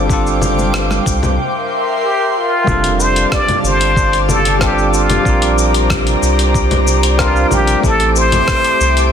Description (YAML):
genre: sunset chillout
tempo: 93 BPM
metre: 4/4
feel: straight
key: F major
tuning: A4 = 440 Hz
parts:
  - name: bell-like tine electric piano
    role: accompaniment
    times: 0.0-9.1 s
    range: G3 to Bb4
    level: -20 LUFS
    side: right 1 dB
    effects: auto-pan, tape echo
  - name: airy breathy pad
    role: sustained chords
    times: 0.0-9.1 s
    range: G4 to D6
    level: -19 LUFS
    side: left 1 dB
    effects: chorus
  - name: warm sub bass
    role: bass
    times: 0.0-9.1 s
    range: F1 to C2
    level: -17 LUFS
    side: equal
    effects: none
  - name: wind-like tuned noise texture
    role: texture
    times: 0.0-9.1 s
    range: D6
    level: -25 LUFS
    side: left 6 dB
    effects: built-in reverb
  - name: dusty soul sampler-style drum kit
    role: drums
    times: 0.1-9.1 s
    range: congas, hi-hat, rim click, shaker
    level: -20 LUFS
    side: left 2 dB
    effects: soft clipping on snare
  - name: electronic kick drum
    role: drums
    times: 0.1-8.6 s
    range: none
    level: -19 LUFS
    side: equal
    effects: none
  - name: congas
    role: percussion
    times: 0.6-1.0 s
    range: none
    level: -26 LUFS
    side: right 2 dB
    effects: none
  - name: trumpet with plunger mute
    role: melody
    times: 2.0-9.1 s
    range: F4 to D5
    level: -16 LUFS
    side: equal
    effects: digital delay
room: light reverb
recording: dense, heavily limited modern master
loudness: -11 LUFS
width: side -8 dB against mid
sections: 0.0-2.7 A section; 2.7-9.1 B section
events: none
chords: 0.0 G7sus4; 1.4 C7; 2.7 F69; 5.3 Bb69; 7.8 Am7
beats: | 0.09 0.74 1.38 2.03 | 2.67 3.32 3.96 4.61 | 5.25 5.90 6.55 7.19 | 7.84 8.48